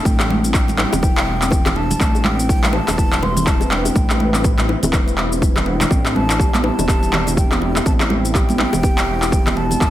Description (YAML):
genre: afro house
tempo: 123 BPM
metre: 4/4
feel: swing 59% on 16ths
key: A minor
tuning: A4 = 439 Hz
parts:
  - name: breathy mellow concert flute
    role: melody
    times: 0.0-9.9 s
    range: G5 to C6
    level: -26 LUFS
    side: right 1 dB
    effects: dub echo
  - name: warm analog pad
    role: sustained chords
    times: 0.0-9.9 s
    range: G3 to B4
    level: -26 LUFS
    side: left 2 dB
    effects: chorus, sidechain pumping
  - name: kalimba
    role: arpeggios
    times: 0.1-9.9 s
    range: G3 to G4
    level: -23 LUFS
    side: equal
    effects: sidechain pumping
  - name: dark detuned saw bass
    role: bass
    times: 0.1-9.9 s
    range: E1 to A1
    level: -23 LUFS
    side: equal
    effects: sidechain pumping
  - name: electronic kick drum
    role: drums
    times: 0.1-9.9 s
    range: none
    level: -17 LUFS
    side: equal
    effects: overdrive
  - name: electronic shaker and handclaps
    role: drums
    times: 0.1-9.9 s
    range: none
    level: -21 LUFS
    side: equal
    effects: overdrive
  - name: congas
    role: percussion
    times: 0.1-9.9 s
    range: none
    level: -25 LUFS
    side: right 2 dB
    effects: none
  - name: bongos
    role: percussion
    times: 0.2-9.5 s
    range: none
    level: -26 LUFS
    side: left 4 dB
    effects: none
room: small room ambience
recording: none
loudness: -14 LUFS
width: side -13 dB against mid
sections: 0.0-9.9 A section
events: none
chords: 0.0 Am7